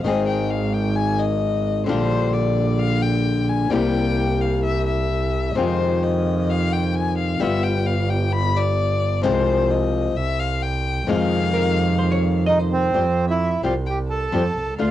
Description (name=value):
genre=tango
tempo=131 BPM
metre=4/4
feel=rubato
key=F minor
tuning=A4 = 440 Hz
part: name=rich violin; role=second line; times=0.0-14.9 s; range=C5 to B5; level=-27 LUFS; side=left 6 dB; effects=cassette tape
part: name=flamenco guitar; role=accompaniment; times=0.0-14.9 s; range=C3 to Ab4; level=-23 LUFS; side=left 4 dB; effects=cassette tape
part: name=clear double bass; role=bass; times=0.0-14.9 s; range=G1 to F2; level=-22 LUFS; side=right 2 dB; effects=none
part: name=vintage hollow-body jazz guitar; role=second line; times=11.5-12.9 s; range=Bb4 to Eb5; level=-24 LUFS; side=equal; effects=cassette tape
part: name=bandoneon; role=melody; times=12.5-14.9 s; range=C4 to A4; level=-22 LUFS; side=right 3 dB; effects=cassette tape
room=light reverb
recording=home recording on cassette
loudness=-18 LUFS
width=side -12 dB against mid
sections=0.0-12.9 A section; 12.9-14.9 B section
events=violin solo 0.0-12.9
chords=0.0 Ab; 1.9 Bb6; 3.7 C7; 5.6 Fm7; 7.4 G7; 9.2 Fm/C; 10.2 C5; 11.1 Fm7; 12.9 Fadd9